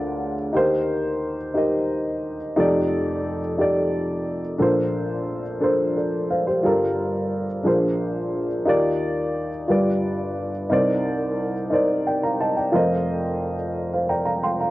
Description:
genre	gospel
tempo	59 BPM (dotted quarters)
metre	6/8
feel	straight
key	Bb major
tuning	A4 = 438 Hz
part	dark upright piano	solo	0.0-14.7 s	F1 to C6	-20 LUFS	equal	cassette tape
room	light reverb, small room ambience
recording	home recording on cassette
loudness	-20 LUFS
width	side -17 dB against mid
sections	0.0-14.7 A section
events	upright piano fill 13.8-14.7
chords	0.0 Bb7/D; 0.5 Eb6; 2.6 F13; 4.6 Bbmaj9; 6.6 Gm9; 7.7 Bb9; 8.7 Ebmaj9; 9.7 G7; 10.7 Cm9; 12.7 F7sus4

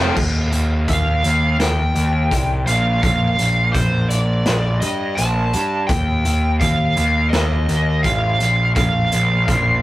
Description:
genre	quiet-loud alternative rock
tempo	84 BPM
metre	4/4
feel	straight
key	unclear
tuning	A4 = 438 Hz
part	fuzz picked electric bass	bass	0.0-9.8 s	A1 to G2	-18 LUFS	equal	overdrive
part	raw garage drum kit	drums	0.2-9.6 s	crash cymbal, hi-hat, kick drum, snare drum	-22 LUFS	equal	none
part	biting lead guitar	melody	0.9-9.8 s	C5 to A5	-20 LUFS	equal	overdrive
room	light reverb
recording	rough rehearsal-room recording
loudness	-15 LUFS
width	side -16 dB against mid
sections	0.2-9.8 A section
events	drum fill 0.0; half time 0.2-9.8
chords	0.2 Ebadd9; 2.7 Bb; 5.9 Ebadd9; 8.4 Bb5

